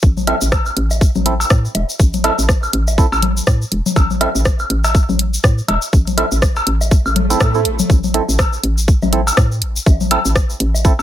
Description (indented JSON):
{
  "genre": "minimal techno",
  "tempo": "122 BPM",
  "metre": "4/4",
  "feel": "swing 58% on 16ths",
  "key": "A minor",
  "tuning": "A4 = 441 Hz",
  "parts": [
    { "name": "hollow knocking FM bass", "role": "bass", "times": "0.0-11.0 s", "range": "E1 to A2", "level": "-18 LUFS", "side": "equal", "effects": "sidechain pumping" },
    { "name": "electronic kick drum", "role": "drums", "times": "0.0-11.0 s", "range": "none", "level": "-13 LUFS", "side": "equal", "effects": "none" },
    { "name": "egg shaker", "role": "percussion", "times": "0.0-11.0 s", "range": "none", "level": "-25 LUFS", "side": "left 2 dB", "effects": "none" },
    { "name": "congas, woodblock and cowbell", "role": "percussion", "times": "0.2-11.0 s", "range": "none", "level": "-19 LUFS", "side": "left 3 dB", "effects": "tape echo" },
    { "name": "percussive organ stab", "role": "stabs", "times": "0.3-10.9 s", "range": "C4 to A4", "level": "-22 LUFS", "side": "right 5 dB", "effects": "chorus, cassette tape, tape echo" },
    { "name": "garage drum kit", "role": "drums", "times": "0.3-10.7 s", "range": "hi-hat, rim click", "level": "-18 LUFS", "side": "equal", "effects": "none" },
    { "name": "swell", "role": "sound effects", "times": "7.1-7.9 s", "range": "none", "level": "-22 LUFS", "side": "right 6 dB", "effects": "none" }
  ],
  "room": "little or no reverb",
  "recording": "none",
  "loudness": "-13 LUFS",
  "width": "side -12 dB against mid",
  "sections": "0.0-7.9 A section; 7.9-11.0 B section",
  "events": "swell 7.1-7.9; drop 7.9-11.0",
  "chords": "0.0 Am"
}